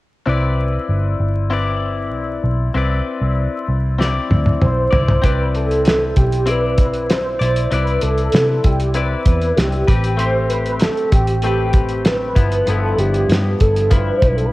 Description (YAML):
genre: indie pop, bedroom pop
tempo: 97 BPM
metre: 4/4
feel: straight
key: unclear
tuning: A4 = 439 Hz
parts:
  - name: direct-recorded clean electric guitar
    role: accompaniment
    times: 0.3-14.5 s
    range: G2 to D5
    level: -22 LUFS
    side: left 4 dB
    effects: analog chorus, warbly pitch drift, cassette tape
  - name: vintage muted picked electric bass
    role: bass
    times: 0.3-14.5 s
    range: G1 to C3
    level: -19 LUFS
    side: equal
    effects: none
  - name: cloth-damped thuddy drum kit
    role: drums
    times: 4.0-14.5 s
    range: hi-hat, kick drum, snare drum, toms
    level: -17 LUFS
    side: equal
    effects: cassette tape
  - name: warm velvety synth lead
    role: melody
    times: 4.6-14.5 s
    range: G4 to C5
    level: -20 LUFS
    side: right 1 dB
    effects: ensemble chorus
room: light reverb, small room ambience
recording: home recording on cassette, vinyl crackle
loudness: -14 LUFS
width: side -18 dB against mid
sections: 0.3-5.2 A section; 5.2-14.5 B section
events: drum fill 4.0-5.2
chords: 0.3 Cmaj9; 4.9 Cadd9; 5.2 Cmaj9; 9.9 Am9; 12.4 G13